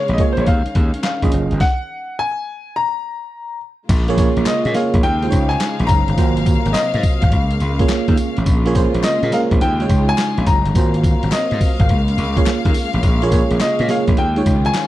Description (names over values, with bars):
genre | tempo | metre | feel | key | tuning
R&B, new jack swing | 105 BPM | 4/4 | swing 66% on 16ths | Bb minor | A4 = 440 Hz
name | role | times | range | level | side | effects
clear concert grand piano | melody | 0.0-14.9 s | C5 to Bb5 | -22 LUFS | left 3 dB | slapback echo
warm studio string section | sustained chords | 0.0-14.9 s | C3 to F5 | -25 LUFS | left 1 dB | none
gritty slap bass | bass | 0.1-14.7 s | Gb1 to Bb2 | -19 LUFS | equal | overdrive
dusty soul sampler-style drum kit | drums | 0.1-14.9 s | crash cymbal, handclaps, hi-hat, kick drum, snare drum, tambourine | -18 LUFS | equal | none
FM electric piano | accompaniment | 0.2-14.9 s | Ab3 to Eb5 | -21 LUFS | right 4 dB | chorus
group handclap | percussion | 1.0-14.9 s | none | -30 LUFS | left 14 dB | none
room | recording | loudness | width
little or no reverb | dry, close 1970s-style studio recording | -14 LUFS | side -15 dB against mid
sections
0.0-3.9 A section; 3.9-14.9 B section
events
stop 1.6-3.9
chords
0.5 Eb9sus4; 1.6 N.C.; 3.9 Bbm7; 5.0 Eb9sus4; 6.2 Ab13; 7.3 Db6; 8.5 Bbm7; 9.6 Eb9sus4; 10.8 Ab13; 11.9 Db6; 13.0 Bbm7; 14.2 Eb9sus4